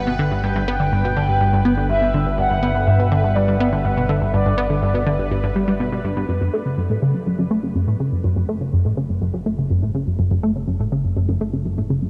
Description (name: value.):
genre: ambient.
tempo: 123 BPM.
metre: 4/4.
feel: straight.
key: F# phrygian.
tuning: A4 = 440 Hz.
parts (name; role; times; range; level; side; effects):
mellow horn-like synth lead; melody; 0.0-5.3 s; D5 to G5; -26 LUFS; equal; phaser, lush chorus, delay.
tight sequenced synth; riff; 0.0-12.1 s; F#2 to B3; -21 LUFS; equal; chorus, phaser, delay.
fat analog bass; bass; 0.0-12.1 s; F#1 to G1; -27 LUFS; equal; none.
bubbling stepped-filter texture; texture; 0.0-6.3 s; B4; -34 LUFS; equal; chorus, built-in reverb.
room: wet huge ambient reverb, RT60 7.8 s.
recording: cassette tape.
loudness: -20 LUFS.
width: mono.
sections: 0.0-6.3 A section; 6.3-12.1 A section.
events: fade-in on analog synth bass 6.3-12.1; filter sweep on synth arpeggio sound 6.3-12.1.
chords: 0.0 G; 6.3 F#m.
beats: | 0.43 0.92 1.41 1.90 | 2.38 2.87 3.36 3.85 | 4.33 4.82 5.31 5.80 | 6.29 6.77 7.26 7.75 | 8.24 8.73 9.21 9.70 | 10.19 10.68 11.16 11.65.